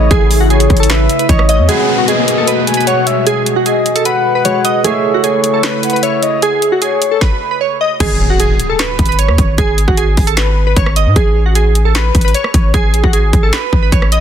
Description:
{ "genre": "hip hop, trap", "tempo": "152 BPM", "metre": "4/4", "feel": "half-time", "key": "G# phrygian", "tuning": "A4 = 441 Hz", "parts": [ { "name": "glassy digital keys", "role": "melody", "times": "0.0-14.2 s", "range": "F#4 to D#5", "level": "-15 LUFS", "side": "right 2 dB", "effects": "chorus, digital delay" }, { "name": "breathy flute-like synth lead", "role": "second line", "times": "0.0-7.2 s", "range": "C#5 to G#5", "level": "-18 LUFS", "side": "left 5 dB", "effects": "chorus, digital delay" }, { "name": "concert harp", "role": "accompaniment", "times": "0.0-8.2 s", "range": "G#3 to C#5", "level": "-22 LUFS", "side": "right 5 dB", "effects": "none" }, { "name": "warbly tape-like pad", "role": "sustained chords", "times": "0.0-7.2 s", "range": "B2 to F#4", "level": "-19 LUFS", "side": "left 2 dB", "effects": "chorus, built-in reverb" }, { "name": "long sustained 808-style bass", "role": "bass", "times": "0.0-1.7, 8.0-14.2 s", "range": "G#1 to G#2", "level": "-13 LUFS", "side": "equal", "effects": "none" }, { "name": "trap drum kit", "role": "drums", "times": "0.1-14.2 s", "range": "crash cymbal, handclaps, hi-hat, kick drum, rim click, snare drum", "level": "-15 LUFS", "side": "equal", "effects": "overdrive" }, { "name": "downlifter and impact", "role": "sound effects", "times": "1.7-4.8, 8.1-9.6 s", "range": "none", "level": "-20 LUFS", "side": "left 1 dB", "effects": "none" } ], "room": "digital ambience", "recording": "dense, heavily limited modern master", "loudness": "-10 LUFS", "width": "side -9 dB against mid", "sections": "0.0-1.7 A section; 1.7-8.0 B section; 8.0-14.2 C section", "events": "impact 8.0-9.6", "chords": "0.0 A; 1.7 G#m7; 4.8 A; 8.0 G#5; 11.2 A" }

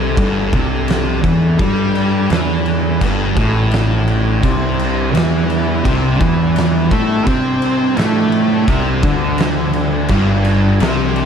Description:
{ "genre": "stoner and doom metal", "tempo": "85 BPM", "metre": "4/4", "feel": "straight", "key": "unclear", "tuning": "A4 = 437 Hz", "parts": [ { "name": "swarming drone", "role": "sustained chords", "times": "0.0-11.3 s", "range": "C3 to A4", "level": "-27 LUFS", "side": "equal", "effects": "none" }, { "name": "thick fuzz guitar", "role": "riff", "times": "0.0-11.3 s", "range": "G2 to C4", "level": "-19 LUFS", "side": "left 8 dB", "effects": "distortion" }, { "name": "thick fuzz guitar", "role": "riff", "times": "0.0-11.3 s", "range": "G2 to C4", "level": "-19 LUFS", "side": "right 8 dB", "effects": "distortion" }, { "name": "fuzz picked electric bass", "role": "bass", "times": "0.0-11.3 s", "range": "G1 to C3", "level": "-20 LUFS", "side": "equal", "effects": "overdrive" }, { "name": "oversized low-tuned drum kit", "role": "drums", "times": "0.2-11.3 s", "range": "crash cymbal, kick drum, snare drum", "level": "-19 LUFS", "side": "equal", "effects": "none" }, { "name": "thick fuzz guitar", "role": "riff", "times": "4.4-11.3 s", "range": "G2 to C4", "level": "-21 LUFS", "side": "equal", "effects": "distortion" } ], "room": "light reverb, studio reverb", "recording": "none", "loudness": "-13 LUFS", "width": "side -7 dB against mid", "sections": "0.0-11.3 A section", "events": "none", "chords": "0.0 G5; 4.4 C5; 10.1 G5" }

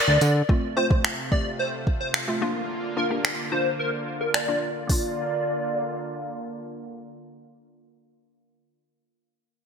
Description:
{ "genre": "dance-pop", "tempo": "109 BPM", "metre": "4/4", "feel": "straight", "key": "Bb major", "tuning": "A4 = 440 Hz", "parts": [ { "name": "plucky unison lead", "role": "melody", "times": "0.0-6.5 s", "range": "Bb4 to D5", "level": "-27 LUFS", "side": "equal", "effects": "ensemble chorus, sidechain pumping, low-pass filter, ping-pong delay" }, { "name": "smooth R&B drum kit", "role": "drums", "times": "0.2-5.0 s", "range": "finger snaps, hi-hat, kick drum", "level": "-24 LUFS", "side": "equal", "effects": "gated reverb" }, { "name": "hollow square pluck", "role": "accompaniment", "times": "0.5-8.6 s", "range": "A3 to G4", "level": "-30 LUFS", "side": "left 2 dB", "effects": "chorus, sidechain pumping, low-pass filter" }, { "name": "lush unison pad", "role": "sustained chords", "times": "0.5-7.9 s", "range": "C3 to F4", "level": "-33 LUFS", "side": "right 1 dB", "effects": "chorus, sidechain pumping, low-pass filter" } ], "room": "moderate lush hall reverb, RT60 2.2 s", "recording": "bright 1980s-style digital production", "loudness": "-23 LUFS", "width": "side -6 dB against mid", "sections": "0.5-4.9 A section; 4.9-7.1 B section", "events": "break 0.0-0.5", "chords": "0.5 F; 2.4 Bb" }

